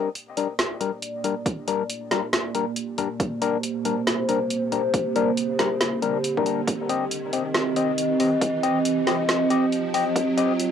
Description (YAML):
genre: deep dubstep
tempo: 138 BPM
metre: 4/4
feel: swing 61% on 16ths, half-time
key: G minor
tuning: A4 = 441 Hz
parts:
  - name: dark analog pad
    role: sustained chords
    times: 0.8-10.7 s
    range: Bb3 to Eb5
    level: -25 LUFS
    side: right 2 dB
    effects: chorus, phaser
  - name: percussive organ stab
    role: stabs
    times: 0.0-10.5 s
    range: G3 to Eb5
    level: -24 LUFS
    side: left 7 dB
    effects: chorus, dub echo
  - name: riser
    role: sound effects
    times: 1.4-10.7 s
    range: none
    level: -36 LUFS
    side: right 1 dB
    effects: none
  - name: deep house drum kit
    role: drums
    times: 0.2-10.7 s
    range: hi-hat, snare drum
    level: -26 LUFS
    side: right 1 dB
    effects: cassette tape
  - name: electronic kick drum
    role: drums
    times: 1.5-10.3 s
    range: none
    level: -26 LUFS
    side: right 1 dB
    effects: high-pass filter on kick, cassette tape, high-pass filter on room
room: moderate booth ambience, RT60 0.2 s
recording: home recording on cassette, high-pass filter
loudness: -21 LUFS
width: side -8 dB against mid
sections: 0.0-10.7 A section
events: build-up 0.0-10.7; filter sweep on synth stab 0.0-10.7; filter sweep 0.0-10.7; riser 1.4-10.7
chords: 0.0 Gm; 6.7 Cm